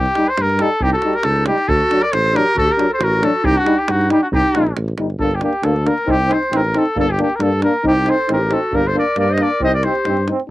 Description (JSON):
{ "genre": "balkan folk, Balkan brass band", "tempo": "136 BPM", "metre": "2/4", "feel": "straight", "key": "C dorian sharp4", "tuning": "A4 = 441 Hz", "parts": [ { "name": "warm trumpet", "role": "melody", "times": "0.0-10.3 s", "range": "F#4 to Eb5", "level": "-18 LUFS", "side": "left 1 dB", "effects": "cassette tape" }, { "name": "mellow tuba", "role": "bass", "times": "0.0-10.3 s", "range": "G1 to G2", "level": "-20 LUFS", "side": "equal", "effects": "none" }, { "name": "davul", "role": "percussion", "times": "0.1-10.5 s", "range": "none", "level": "-26 LUFS", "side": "right 1 dB", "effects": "none" }, { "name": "clear trombone", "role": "accompaniment", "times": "0.2-10.4 s", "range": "F#3 to C4", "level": "-23 LUFS", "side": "right 4 dB", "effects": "cassette tape" }, { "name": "warm euphonium", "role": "accompaniment", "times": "0.2-10.4 s", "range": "D4 to Eb4", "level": "-19 LUFS", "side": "left 2 dB", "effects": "cassette tape" }, { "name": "mellow clarinet", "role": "second line", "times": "0.8-4.7, 7.9-10.3 s", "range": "D4 to C5", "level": "-22 LUFS", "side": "right 1 dB", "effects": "cassette tape" } ], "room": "moderate booth ambience, RT60 0.2 s", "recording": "home recording on cassette", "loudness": "-14 LUFS", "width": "side -16 dB against mid", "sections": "0.0-5.2 A section; 5.2-10.5 B section", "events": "none", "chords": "0.0 Cm (rootless); 1.7 D; 3.4 Cm; 5.2 Gm; 6.1 Cm; 7.0 Gm; 7.9 Cm; 8.7 Gm; 9.6 Cm" }